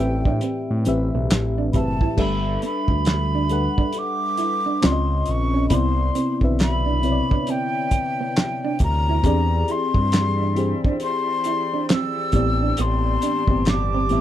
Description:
R&B, neo-soul; 68 BPM; 4/4; swing 62% on 16ths; G major; A4 = 441 Hz
breathy mellow jazz flute; melody; 0.0-14.2 s; G5 to E6; -25 LUFS; left 1 dB
mellow FM electric piano; accompaniment; 0.0-14.2 s; A2 to F#5; -25 LUFS; left 2 dB; chorus
smooth gliding synth bass; bass; 0.0-14.2 s; F#1 to A2; -22 LUFS; equal
hollow-body jazz guitar; second line; 0.3-14.1 s; A3 to E4; -28 LUFS; right 6 dB
cloth-damped thuddy drum kit; drums; 0.3-14.2 s; crash cymbal, handclaps, hi-hat, kick drum, snare drum; -22 LUFS; equal
flute section; sustained chords; 9.2-14.2 s; E4 to A5; -36 LUFS; right 2 dB
little or no reverb; -19 LUFS; side -12 dB against mid
0.0-2.2 A section; 2.2-14.2 B section
0.0 Am11; 2.2 G69; 4.8 C#maj9; 5.7 Cmaj9; 9.2 E7alt; 12.3 G69

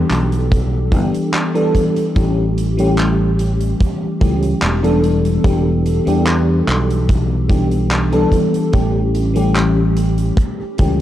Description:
vaporwave; 73 BPM; 4/4; straight; E dorian; A4 = 440 Hz
FM electric piano with soft pad layer; accompaniment; 0.0-11.0 s; E3 to A4; -16 LUFS; left 1 dB; ensemble chorus, tape echo
fingered electric bass; bass; 0.0-11.0 s; E1 to E2; -18 LUFS; equal
gated 80s drum kit; drums; 0.1-11.0 s; handclaps, hi-hat; -25 LUFS; equal
kick drum; drums; 0.5-11.0 s; -17 LUFS; equal
studio reverb; dark, warm production, cassette tape; -13 LUFS; side -12 dB against mid
0.0-11.0 A section
0.0 Em7; 2.2 A7; 5.0 Em7; 8.7 A7

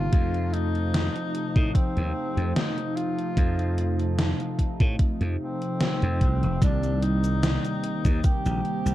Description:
vaporwave; 74 BPM; 4/4; straight; A4 = 441 Hz
warm tenor saxophone; melody; 0.0-8.9 s; C4 to G4; -32 LUFS; equal; vintage 12-bit sampler grit, tape echo
mellow synth brass; accompaniment; 0.0-8.9 s; C3 to Eb4; -30 LUFS; equal; lush chorus
warbly tape-like pad; sustained chords; 0.0-8.9 s; Eb3 to Bb5; -40 LUFS; left 1 dB; chorus, built-in reverb
slap bass; bass; 0.0-8.9 s; F1 to A2; -25 LUFS; equal
electronic kick drum; drums; 0.1-8.4 s; -22 LUFS; equal; overdrive
gated 80s digital drum machine; drums; 0.1-8.9 s; cabasa, hi-hat, snare drum; -29 LUFS; equal; gated reverb, gated reverb snare, overdrive
little or no reverb; dark, warm production, cassette tape; -22 LUFS; side -14 dB against mid
0.0-6.6 A section; 6.6-8.9 B section
0.1 F7; 6.6 Cm7

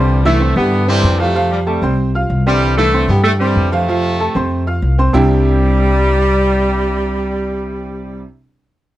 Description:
latin; 190 BPM; 4/4; straight; C major; A4 = 440 Hz
warm horn section; melody; 0.0-8.2 s; C3 to C4; -17 LUFS; equal
bright baby grand piano; accompaniment; 0.0-8.2 s; C3 to F6; -18 LUFS; right 2 dB
upright bass; bass; 0.0-8.2 s; C2 to G2; -16 LUFS; left 1 dB
little or no reverb; dry, close 1970s-style studio recording; -12 LUFS; side -14 dB against mid
0.0-5.1 A section; 5.1-7.7 B section
0.1 Cadd9; 1.4 Fadd9; 2.6 Cadd9; 3.9 F; 5.1 Cadd9

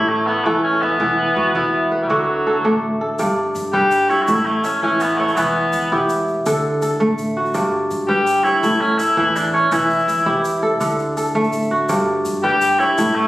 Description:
west african traditional, West African string and xylophone music; 110 BPM (dotted quarters); 12/8; straight; G lydian; A4 = 440 Hz
warm cor anglais; melody; 0.0-13.3 s; F#3 to G4; -17 LUFS; left 1 dB
kora; arpeggios; 0.0-13.3 s; G2 to E5; -18 LUFS; right 1 dB
upright bass; bass; 0.0-13.3 s; E1 to G2; -32 LUFS; left 1 dB
egg shaker; percussion; 3.2-13.1 s; -36 LUFS; left 3 dB
wet recital hall reverb, RT60 1.5 s; recorded on a phone in the room, studio reverb; -15 LUFS; side -16 dB against mid
0.0-3.2 A section; 3.2-13.3 A section
0.0 A; 1.0 E5; 2.1 D; 3.2 G; 4.3 A; 5.4 Em; 6.5 D; 7.5 G; 8.6 A; 9.7 Em; 10.8 D; 11.9 G

